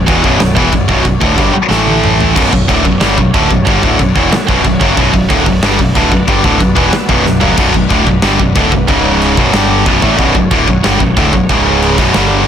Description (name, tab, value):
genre	heavy metal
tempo	184 BPM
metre	4/4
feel	straight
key	B minor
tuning	A4 = 437 Hz
part	sweeping resonant pad	sustained chords	0.0-12.5 s	C#3 to D5	-22 LUFS	equal	chorus
part	high-gain distorted guitar	riff	0.0-12.5 s	B1 to A3	-13 LUFS	left 11 dB	distortion
part	tight distorted guitar	riff	0.0-12.5 s	B1 to A3	-13 LUFS	right 9 dB	distortion
part	growling picked electric bass	bass	0.0-12.5 s	B0 to A1	-17 LUFS	equal	overdrive
part	big rock drum kit	drums	0.1-12.2 s	china cymbal, crash cymbal, kick drum, snare drum, toms	-14 LUFS	equal	none
room	little or no reverb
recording	dense, heavily limited modern master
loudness	-8 LUFS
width	side -8 dB against mid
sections	0.0-2.4 A section; 2.4-12.5 B section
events	drum fill 1.7-2.4, 7.3-7.6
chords	0.0 Bm; 1.7 A5; 2.4 Bm; 8.9 C#5; 9.4 Bm; 9.5 G5; 9.9 Bm; 11.5 C#5; 12.0 Bm; 12.1 G5